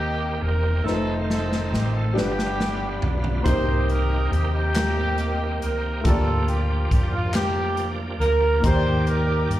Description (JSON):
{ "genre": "slow gospel", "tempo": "46 BPM (dotted quarters)", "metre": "6/8", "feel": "straight", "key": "unclear", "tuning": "A4 = 440 Hz", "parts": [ { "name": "warm horn section", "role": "melody", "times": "0.0-9.6 s", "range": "Bb3 to C5", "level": "-26 LUFS", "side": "right 2 dB", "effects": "plate reverb, slapback echo" }, { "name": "warm baby grand piano", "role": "accompaniment", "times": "0.0-9.6 s", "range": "G2 to D5", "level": "-28 LUFS", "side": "left 2 dB", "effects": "plate reverb, slapback echo" }, { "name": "bright tonewheel organ", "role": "sustained chords", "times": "0.0-9.6 s", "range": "D3 to D5", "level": "-32 LUFS", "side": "right 2 dB", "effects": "slow rotary speaker, chorus vibrato, plate reverb" }, { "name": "hollow-body short-scale fingered electric bass", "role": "bass", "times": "0.0-9.6 s", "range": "E1 to G2", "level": "-24 LUFS", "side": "equal", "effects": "none" }, { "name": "swinging big-band drum kit", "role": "drums", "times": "0.9-9.6 s", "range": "hi-hat, kick drum, snare drum, toms", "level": "-27 LUFS", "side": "equal", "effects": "none" }, { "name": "group handclap", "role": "percussion", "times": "4.8-7.7 s", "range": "none", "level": "-34 LUFS", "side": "left 3 dB", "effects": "none" } ], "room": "light reverb", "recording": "live gig heard through the venue's PA, club ambience", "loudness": "-20 LUFS", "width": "side -14 dB against mid", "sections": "0.0-9.6 A section", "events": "drum fill 0.9-3.5", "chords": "0.0 Cm7; 0.9 F7; 2.2 G7; 3.5 Cm7; 6.0 Gm7/D; 8.6 Ebmaj7", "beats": "| 0.86 2.16 | 3.46 4.75 | 6.05 7.34 | 8.64" }